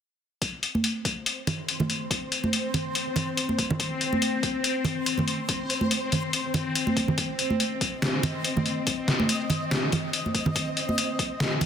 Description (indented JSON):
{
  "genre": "deep dubstep",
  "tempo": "142 BPM",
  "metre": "4/4",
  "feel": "swing 56% on 16ths, half-time",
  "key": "unclear",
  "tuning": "A4 = 440 Hz",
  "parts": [
    { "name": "electronic kick drum", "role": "drums", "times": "0.4-11.3 s", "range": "none", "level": "-34 LUFS", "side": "left 1 dB", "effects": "high-pass filter on kick, high-pass filter on room" },
    { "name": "trip hop sampler-style drum kit", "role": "drums", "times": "0.4-11.7 s", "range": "hi-hat, snare drum", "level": "-27 LUFS", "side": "left 3 dB", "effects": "none" },
    { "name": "backwards swelling texture", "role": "texture", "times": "1.3-11.7 s", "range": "C4 to Eb5", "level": "-30 LUFS", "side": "left 1 dB", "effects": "built-in reverb" },
    { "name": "congas", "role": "percussion", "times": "0.7-11.7 s", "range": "none", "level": "-28 LUFS", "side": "right 2 dB", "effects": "dub echo" }
  ],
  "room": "moderate lush hall reverb, RT60 2.0 s",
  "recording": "dense, heavily limited modern master",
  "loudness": "-24 LUFS",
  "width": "side -8 dB against mid",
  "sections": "0.4-11.7 A section",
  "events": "none",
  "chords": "0.4 Cm",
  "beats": "| 0.42 0.84 1.26 1.69 | 2.11 2.53 2.95 3.38 | 3.80 4.22 4.64 5.07 | 5.49 5.91 6.33 6.75 | 7.18 7.60 8.02 8.45 | 8.87 9.29 9.71 10.13 | 10.56 10.98 11.40"
}